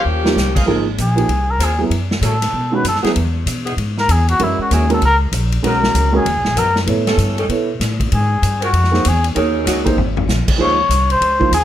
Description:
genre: jazz, big band swing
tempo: 194 BPM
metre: 4/4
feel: swing 63% on 8ths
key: unclear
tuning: A4 = 440 Hz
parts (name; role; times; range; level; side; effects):
- clear saxophone section; melody; 0.0-0.6 s; F3 to G4; -22 LUFS; left 3 dB; none
- upright bass; bass; 0.0-11.6 s; Ab1 to B2; -18 LUFS; equal; none
- warm grand piano; accompaniment; 0.2-11.5 s; D#3 to C#5; -19 LUFS; right 4 dB; none
- swinging big-band drum kit; drums; 0.3-11.6 s; crash cymbal, hi-hat, kick drum, ride cymbal, snare drum, toms; -22 LUFS; left 1 dB; none
- clear trumpet section; stabs; 0.6 s; Ab4 to F5; -22 LUFS; left 1 dB; none
- warm saxophone section; sustained chords; 0.7-10.7 s; Fb3 to C5; -23 LUFS; left 1 dB; none
- trumpet with cup mute; melody; 1.0-11.6 s; Fb4 to Db5; -17 LUFS; left 2 dB; none
room: light reverb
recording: none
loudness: -14 LUFS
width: side -11 dB against mid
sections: 0.7-10.6 A section; 10.6-11.6 A section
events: drum fill 0.1-0.4, 10.0-10.3; muted trumpet solo 0.7-11.6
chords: 0.1 Eb13; 0.7 Ab69; 1.9 Gbm7; 2.5 B; 3.2 E; 4.4 Gb; 5.6 Bmaj7; 6.9 A7; 8.1 Ab69; 9.4 Ebm7; 10.0 Absus2; 10.6 Dbmaj9

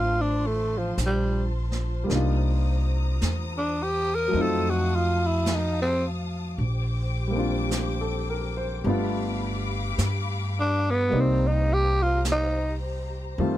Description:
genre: jazz ballad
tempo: 53 BPM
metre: 4/4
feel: swing 66% on 8ths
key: unclear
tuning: A4 = 440 Hz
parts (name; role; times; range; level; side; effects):
- growling tenor saxophone; melody; 0.0-12.7 s; F3 to Bb4; -25 LUFS; equal; none
- warm baby grand piano; accompaniment; 0.0-13.6 s; Eb3 to D5; -30 LUFS; left 1 dB; none
- warm symphonic string section; sustained chords; 0.0-13.6 s; F4 to Eb6; -36 LUFS; left 2 dB; none
- upright bass; bass; 0.0-13.6 s; G1 to G2; -26 LUFS; equal; none
- jazz brush drum kit; drums; 1.0-13.6 s; brushed snare drum, hi-hat, snare drum; -34 LUFS; right 2 dB; none
room: little or no reverb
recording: none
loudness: -23 LUFS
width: side -13 dB against mid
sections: 0.0-13.6 A section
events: tenor saxophone solo 0.0-13.6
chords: 0.0 Dm7; 2.1 Cm11; 4.3 F7b9; 6.6 Bb69; 8.8 G7; 11.1 Cm7

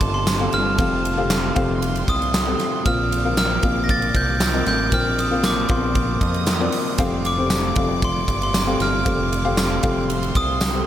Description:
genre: piano-driven pop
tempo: 116 BPM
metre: 4/4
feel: straight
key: F mixolydian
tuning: A4 = 440 Hz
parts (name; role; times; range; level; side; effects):
- glockenspiel with soft plastic mallets; melody; 0.0-10.8 s; C6 to Bb6; -24 LUFS; equal; plate reverb
- bright studio violin section; second line; 0.0-10.9 s; A4 to Eb6; -32 LUFS; right 2 dB; plate reverb
- felt-muted upright piano; accompaniment; 0.0-10.9 s; Bb2 to G5; -26 LUFS; left 4 dB; plate reverb
- percussive tonewheel organ; sustained chords; 0.0-10.9 s; C3 to Bb4; -34 LUFS; right 1 dB; none
- picked steel-string acoustic guitar; riff; 0.0-10.9 s; F2 to F4; -31 LUFS; right 4 dB; none
- fat analog bass; bass; 0.0-10.8 s; F1 to F2; -25 LUFS; equal; none
- huge arena drum kit; drums; 0.0-10.7 s; handclaps, hi-hat, kick drum, ride cymbal, snare drum; -23 LUFS; equal; none
- tambourine; percussion; 0.3-10.7 s; none; -31 LUFS; right 5 dB; none
room: light reverb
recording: none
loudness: -18 LUFS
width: side -11 dB against mid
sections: 0.0-10.9 A section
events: none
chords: 0.0 Fadd9; 2.9 Bbsus2; 7.0 Fadd9

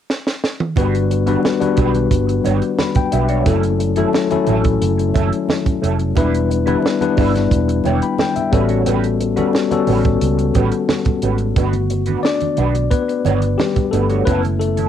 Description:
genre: lush 1970s-style soul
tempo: 89 BPM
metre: 4/4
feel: straight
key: unclear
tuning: A4 = 440 Hz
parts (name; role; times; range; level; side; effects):
- compact cocktail drum kit; drums; 0.1-14.9 s; hi-hat, kick drum, snare drum, toms; -20 LUFS; right 2 dB; cassette tape
- tine electric piano; accompaniment; 0.8-14.9 s; F#3 to B5; -18 LUFS; left 6 dB; fast stereo tremolo
- electric guitar at the edge of break-up; riff; 0.8-14.9 s; F#3 to C#5; -24 LUFS; right 10 dB; wah
- vintage muted fingered electric bass; bass; 0.8-14.9 s; E1 to C#2; -19 LUFS; right 2 dB; none
- congas; percussion; 0.8-14.9 s; none; -28 LUFS; right 13 dB; none
room: moderate studio reverb, RT60 0.5 s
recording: home recording on cassette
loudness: -14 LUFS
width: side -9 dB against mid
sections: 0.8-11.6 A section; 11.6-14.9 B section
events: drum fill 0.1-0.8; tine electric piano solo 11.6-14.9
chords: 0.0 N.C.; 0.8 Gmaj7; 3.5 F#m7; 6.2 Em7; 8.5 A13; 11.6 Gmaj7; 14.3 F#m7

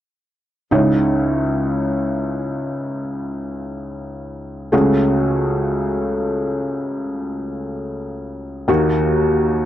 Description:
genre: pop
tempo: free time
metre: none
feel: none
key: C# minor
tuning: A4 = 439 Hz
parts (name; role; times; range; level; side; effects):
- felt-muted upright piano; accompaniment; 0.7-9.7 s; C#2 to C#5; -18 LUFS; equal; none
room: light reverb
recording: dry, close 1970s-style studio recording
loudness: -17 LUFS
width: side -12 dB against mid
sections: 0.7-9.7 A section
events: none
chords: 0.7 C#madd9; 4.7 F#madd9/C#; 8.7 D#m

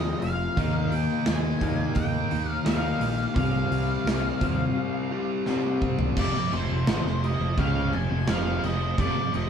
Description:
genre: quiet-loud alternative rock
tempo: 86 BPM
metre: 4/4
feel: straight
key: F minor from 6.2 s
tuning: A4 = 440 Hz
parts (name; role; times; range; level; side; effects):
- octave-fuzz lead guitar; melody; 0.0-9.5 s; C5 to Ab5; -32 LUFS; equal; distortion
- electric guitar through a small old amp; arpeggios; 0.0-6.1 s; C3 to C4; -33 LUFS; left 2 dB; harmonic tremolo
- crunchy overdriven guitar; riff; 0.0-9.5 s; F2 to Eb4; -30 LUFS; left 7 dB; none
- hollow-body short-scale fingered electric bass; bass; 0.0-9.5 s; F1 to Eb2; -30 LUFS; right 1 dB; none
- big rock drum kit; drums; 0.2-9.5 s; crash cymbal, hi-hat, kick drum, snare drum, toms; -28 LUFS; right 2 dB; none
- thick fuzz guitar; riff; 0.6-9.5 s; F2 to Eb4; -31 LUFS; right 4 dB; distortion
- soft string machine; sustained chords; 6.2-9.5 s; Ab3 to C5; -40 LUFS; left 1 dB; phaser, ensemble chorus
room: moderate studio reverb, RT60 0.7 s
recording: band playing live in one room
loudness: -23 LUFS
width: side -7 dB against mid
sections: 0.0-6.2 A section; 6.2-9.5 B section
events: drum fill 5.5-6.2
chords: 0.0 Fmadd9; 0.6 Eb; 3.4 Csus4; 6.2 Fm

